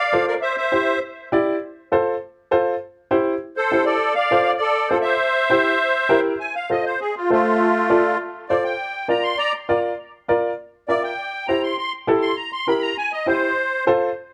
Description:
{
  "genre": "latin",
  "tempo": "201 BPM",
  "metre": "4/4",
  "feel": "straight",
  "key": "F major",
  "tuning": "A4 = 442 Hz",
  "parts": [
    { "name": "musette accordion", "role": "melody", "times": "0.0-1.0, 3.6-13.8 s", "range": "A3 to C6", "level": "-22 LUFS", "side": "equal", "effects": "plate reverb, tape echo" },
    { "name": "warm upright piano", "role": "accompaniment", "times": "0.1-14.1 s", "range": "E4 to E5", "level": "-22 LUFS", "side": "equal", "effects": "none" }
  ],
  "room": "moderate small room ambience, RT60 0.5 s",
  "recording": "none",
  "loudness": "-20 LUFS",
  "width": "mono",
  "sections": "0.0-6.4 A section; 6.4-14.3 B section",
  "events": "accordion solo 6.4-14.3",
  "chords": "0.4 C; 1.6 F; 2.8 C; 4.0 F; 5.2 C7; 6.4 F; 8.8 Bb; 11.2 C; 13.6 F",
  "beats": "0.13 | 0.43 0.73 1.03 1.33 | 1.63 1.92 2.22 2.52 | 2.82 3.12 3.42 3.72 | 4.01 4.31 4.61 4.91 | 5.21 5.51 5.81 6.11 | 6.40 6.70 7.00 7.30 | 7.60 7.90 8.20 8.49 | 8.79 9.09 9.39 9.69 | 9.99 10.29 10.58 10.88 | 11.18 11.48 11.78 12.08 | 12.38 12.67 12.97 13.27 | 13.57 13.87"
}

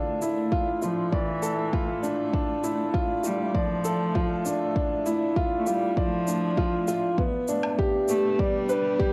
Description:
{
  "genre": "piano and strings electronica",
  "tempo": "99 BPM",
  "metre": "4/4",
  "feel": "straight",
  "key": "D dorian",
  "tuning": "A4 = 440 Hz",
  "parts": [
    { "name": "granular cloud pad", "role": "sustained chords", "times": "0.0-9.1 s", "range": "A3 to E5", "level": "-37 LUFS", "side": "equal", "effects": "built-in reverb, sidechain pumping, cassette tape" },
    { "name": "clear upright piano", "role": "riff", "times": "0.0-9.1 s", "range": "B3 to D5", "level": "-28 LUFS", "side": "equal", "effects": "cassette tape, tape echo" },
    { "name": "shaker and woodblock", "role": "drums", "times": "0.2-8.8 s", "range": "none", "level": "-39 LUFS", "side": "equal", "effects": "overdrive, high-pass filter on perc, high-pass filter on room" },
    { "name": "electronic kick drum", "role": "drums", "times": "0.5-9.1 s", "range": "none", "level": "-30 LUFS", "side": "equal", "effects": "overdrive" },
    { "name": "rich cello", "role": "melody", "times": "0.8-9.1 s", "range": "E3 to A3", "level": "-33 LUFS", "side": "equal", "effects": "low-pass filter, tape echo" }
  ],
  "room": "wet booth ambience, RT60 0.2 s",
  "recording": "home recording on cassette",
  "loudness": "-26 LUFS",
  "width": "mono",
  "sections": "0.0-9.1 A section",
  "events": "build-up 0.0-9.1; filter sweep on cello 0.0-9.1",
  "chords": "0.0 Dmadd9; 7.2 G",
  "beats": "0.52 1.12 1.73 | 2.34 2.94 3.55 4.16 | 4.76 5.37 5.97 6.58 | 7.18 7.79 8.40 9.00"
}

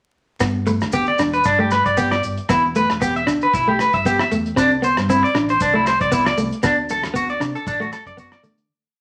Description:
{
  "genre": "highlife guitar band",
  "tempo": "116 BPM",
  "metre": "4/4",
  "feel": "swing 55% on 16ths",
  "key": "unclear",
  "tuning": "A4 = 440 Hz",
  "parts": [
    { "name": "clean electric guitar", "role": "accompaniment", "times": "0.4-8.6 s", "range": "A3 to D4", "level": "-24 LUFS", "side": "equal", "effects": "none" },
    { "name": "electric guitar at the edge of break-up", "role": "arpeggios", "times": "0.4-8.4 s", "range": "D4 to E5", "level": "-21 LUFS", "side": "equal", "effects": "none" },
    { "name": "fingered electric bass", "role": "bass", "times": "0.4-8.7 s", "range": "E1 to D3", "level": "-30 LUFS", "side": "equal", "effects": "none" },
    { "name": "cloth-damped thuddy drum kit", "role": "drums", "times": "0.4-8.7 s", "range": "hi-hat, kick drum, rim click", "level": "-27 LUFS", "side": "equal", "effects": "none" },
    { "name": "maracas", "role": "percussion", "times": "0.4-8.6 s", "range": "none", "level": "-40 LUFS", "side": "equal", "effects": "none" }
  ],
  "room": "wet studio reverb, RT60 0.7 s",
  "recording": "vinyl crackle",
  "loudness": "-18 LUFS",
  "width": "mono",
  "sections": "0.4-8.7 groove",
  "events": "fade-out 6.6-8.7",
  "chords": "0.4 Em; 4.6 Cadd9; 6.6 D",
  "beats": "| 0.41 0.94 1.46 1.98 | 2.50 3.02 3.54 4.06 | 4.58 5.09 5.61 6.12 | 6.64 7.15 7.66 8.17"
}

